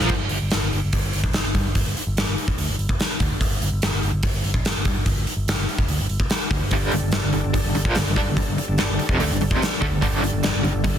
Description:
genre	hard rock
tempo	145 BPM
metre	4/4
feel	straight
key	unclear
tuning	A4 = 440 Hz
part	overdriven tonewheel organ	sustained chords	0.0-0.1, 6.7-11.0 s	G3 to A4	-33 LUFS	left 1 dB	slow rotary speaker, chorus vibrato
part	overdriven semi-hollow guitar	riff	0.0-0.1, 6.7-11.0 s	F2 to D4	-23 LUFS	equal	tremolo
part	picked electric bass	bass	0.0-11.0 s	F1 to G2	-25 LUFS	equal	none
part	gated 80s drum kit	drums	0.0-10.9 s	crash cymbal, hi-hat, kick drum, snare drum	-22 LUFS	equal	soft clipping on snare
room	studio reverb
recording	dense, heavily limited modern master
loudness	-19 LUFS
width	side -9 dB against mid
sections	0.1-11.0 A section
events	none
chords	0.1 G5

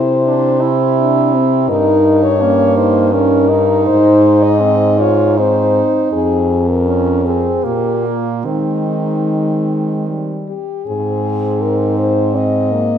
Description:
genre	classical, lyrical piece for horn quartet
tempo	72-84 BPM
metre	3/4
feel	rubato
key	Ab major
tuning	A4 = 441 Hz
part	mellow French horn	melody	0.0-13.0 s	Eb4 to Eb5	-16 LUFS	left 6 dB	none
part	mellow French horn	accompaniment	0.0-13.0 s	G3 to E4	-19 LUFS	left 2 dB	none
part	clear French horn	bass	0.0-13.0 s	F2 to Eb3	-18 LUFS	right 2 dB	none
part	clear French horn	second line	0.3-13.0 s	Bb3 to F4	-18 LUFS	right 7 dB	none
room	moderate recital hall reverb, RT60 1.3 s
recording	dark, warm production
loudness	-12 LUFS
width	side -8 dB against mid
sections	0.0-10.9 A section; 10.9-13.0 B section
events	none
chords	0.0 Cadd9; 1.7 Eb7/G; 3.9 Ab; 6.1 F5; 7.6 Bb5; 8.4 Ab/Eb; 10.1 Eb; 10.9 Ab

